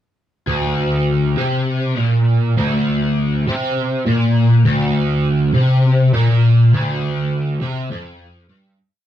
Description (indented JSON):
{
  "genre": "rock",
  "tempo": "202 BPM (eighths)",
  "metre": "7/8",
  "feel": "straight",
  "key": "D minor",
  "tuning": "A4 = 436 Hz",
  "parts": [
    { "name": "cranked stack guitar", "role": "solo", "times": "0.5-8.8 s", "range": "D2 to C3", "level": "-14 LUFS", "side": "equal", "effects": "overdrive, rotary speaker" }
  ],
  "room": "moderate small room reverb, RT60 0.6 s",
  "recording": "rough rehearsal-room recording, warm saturation",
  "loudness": "-14 LUFS",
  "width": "side -11 dB against mid",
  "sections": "0.5-8.8 riff",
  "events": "fade-out 6.7-8.8",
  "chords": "none"
}